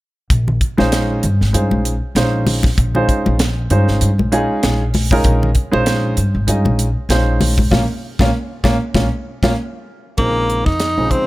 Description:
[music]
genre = electric jazz fusion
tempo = 97 BPM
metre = 4/4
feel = swing 56% on 16ths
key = Bb dorian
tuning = A4 = 440 Hz
[part]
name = upright bass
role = bass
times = 0.3-11.1 s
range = Ab1 to G2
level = -17 LUFS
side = equal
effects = none
[part]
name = crisp fusion drum kit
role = drums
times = 0.3-11.3 s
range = hi-hat, kick drum, snare drum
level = -19 LUFS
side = equal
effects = none
[part]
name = congas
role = percussion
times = 0.5-9.6 s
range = none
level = -20 LUFS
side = left 2 dB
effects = none
[part]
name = dark baby grand piano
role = accompaniment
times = 0.8-11.3 s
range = Db3 to Eb5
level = -19 LUFS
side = right 1 dB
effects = none
[part]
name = breathy tenor saxophone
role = melody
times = 10.2-11.3 s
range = Bb3 to Eb4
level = -17 LUFS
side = equal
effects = slapback echo
[sound]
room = small room ambience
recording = none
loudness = -14 LUFS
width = side -18 dB against mid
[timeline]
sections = 0.3-10.2 A section; 10.2-11.3 B section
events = band accent 7.7-10.2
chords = 0.3 Bbm11

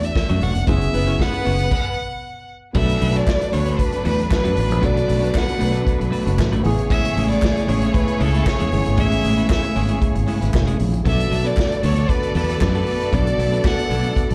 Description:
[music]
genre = disco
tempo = 116 BPM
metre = 4/4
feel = straight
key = B dorian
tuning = A4 = 439 Hz
[part]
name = rich violin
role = melody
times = 0.0-14.2 s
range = A4 to F#5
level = -27 LUFS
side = equal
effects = slapback echo
[part]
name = electric guitar at the edge of break-up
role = accompaniment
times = 0.0-14.3 s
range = F#3 to E5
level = -31 LUFS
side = equal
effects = slapback echo
[part]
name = tine electric piano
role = accompaniment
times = 0.0-14.3 s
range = C#3 to A4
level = -30 LUFS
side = equal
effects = slapback echo
[part]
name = warm French horn section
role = sustained chords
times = 0.0-14.3 s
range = B2 to G#4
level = -33 LUFS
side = equal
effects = none
[part]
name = fingered electric bass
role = bass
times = 0.0-14.3 s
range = E1 to F#2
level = -22 LUFS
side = equal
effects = none
[part]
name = vintage drum kit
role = drums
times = 0.0-14.3 s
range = crash cymbal, hi-hat, kick drum, snare drum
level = -25 LUFS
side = equal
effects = none
[part]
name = clear symphonic string section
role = second line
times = 0.9-14.3 s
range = F#3 to D5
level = -29 LUFS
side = equal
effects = slapback echo
[part]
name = group handclap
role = percussion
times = 3.3-13.8 s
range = none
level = -37 LUFS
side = equal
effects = slapback echo
[sound]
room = little or no reverb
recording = live gig heard through the venue's PA, club reverb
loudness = -19 LUFS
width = mono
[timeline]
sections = 0.0-2.7 A section; 2.7-14.3 B section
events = stop 1.7-2.7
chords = 0.0 Bm9; 0.7 F#7sus4; 2.7 Bm7; 6.6 Amaj7; 11.1 Bm7

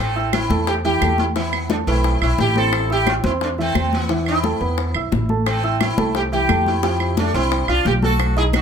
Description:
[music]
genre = latin, salsa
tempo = 175 BPM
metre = 4/4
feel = straight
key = A minor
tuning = A4 = 439 Hz
[part]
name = sitar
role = melody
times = 0.0-8.6 s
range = E3 to A4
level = -21 LUFS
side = equal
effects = none
[part]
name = upright bass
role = bass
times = 0.0-8.6 s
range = A1 to F2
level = -22 LUFS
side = equal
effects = none
[part]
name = dark grand piano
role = accompaniment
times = 0.2-8.6 s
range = E3 to F6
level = -24 LUFS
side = right 3 dB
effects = none
[part]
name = bongos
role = percussion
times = 0.2-8.6 s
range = none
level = -29 LUFS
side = left 10 dB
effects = none
[part]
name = congas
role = percussion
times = 0.2-8.6 s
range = none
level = -25 LUFS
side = left 3 dB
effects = none
[part]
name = claves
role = percussion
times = 0.3-8.6 s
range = none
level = -28 LUFS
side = right 10 dB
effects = none
[sound]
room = light reverb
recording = close, detailed microphones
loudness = -16 LUFS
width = side -7 dB against mid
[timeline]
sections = 0.0-8.6 A section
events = none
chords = 0.0 Am7; 1.4 Esus4; 2.7 Am; 4.1 Esus4; 4.8 E5; 5.5 Am7; 6.8 Fadd9

